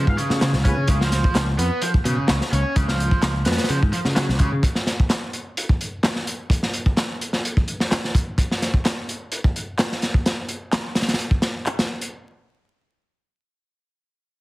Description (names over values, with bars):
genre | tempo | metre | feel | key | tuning
breakbeat, breaks | 128 BPM | 4/4 | straight | unclear | A4 = 440 Hz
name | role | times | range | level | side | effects
overdriven electric guitar | riff | 0.0-4.5 s | C#3 to C#4 | -25 LUFS | right 1 dB | digital delay
picked electric bass | bass | 0.0-4.6 s | C#2 to C#3 | -22 LUFS | equal | none
downlifter | sound effects | 0.0-0.9 s | none | barely audible | none | none
clear brass ensemble | stabs | 0.1-0.8 s | B3 to E#5 | -31 LUFS | equal | vintage 12-bit sampler grit, low-pass filter, digital delay
crunchy breakbeat drum kit | drums | 0.1-12.1 s | hi-hat, kick drum, snare drum | -21 LUFS | equal | none
electronic handclaps | drums | 0.4-11.8 s | none | -30 LUFS | equal | none
room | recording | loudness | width
small room ambience | heavily compressed radio sound, multiband compression, vinyl crackle | -19 LUFS | side -19 dB against mid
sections
0.0-12.1 A section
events
none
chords
0.0 C#